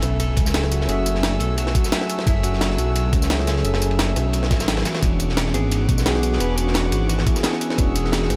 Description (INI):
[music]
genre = liquid drum and bass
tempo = 174 BPM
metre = 4/4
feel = swing 54% on 16ths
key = F# minor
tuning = A4 = 440 Hz
[part]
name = breathy alto saxophone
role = melody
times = 0.0-7.9 s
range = E4 to B4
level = -34 LUFS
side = equal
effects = delay
[part]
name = mellow tine electric piano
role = accompaniment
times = 0.0-8.4 s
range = E3 to G#5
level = -28 LUFS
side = equal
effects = phaser, diffuse ambient delay
[part]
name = rich chamber string section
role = sustained chords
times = 0.0-8.4 s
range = A3 to E6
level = -35 LUFS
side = equal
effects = sidechain pumping
[part]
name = swelling detuned saw bass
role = bass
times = 0.0-8.4 s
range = E1 to C#2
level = -24 LUFS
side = equal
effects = none
[part]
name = breakbeat sampler-style drum kit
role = drums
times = 0.0-8.4 s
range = hi-hat, snare drum, tambourine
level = -28 LUFS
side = equal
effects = none
[part]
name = crunchy breakbeat drum kit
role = drums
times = 0.0-8.4 s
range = ride cymbal, snare drum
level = -32 LUFS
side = equal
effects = high-pass filter on cymbals, high-pass filter on snare, high-pass filter on room
[part]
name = sub drop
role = sound effects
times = 0.0-0.9 s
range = none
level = -39 LUFS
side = equal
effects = none
[part]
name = electronic kick drum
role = drums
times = 0.4-7.9 s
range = none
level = -23 LUFS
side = equal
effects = none
[sound]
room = light reverb, small room ambience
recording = none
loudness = -20 LUFS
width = mono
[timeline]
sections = 0.0-8.4 A section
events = impact 0.0-0.9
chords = 0.0 F#m9; 4.9 E13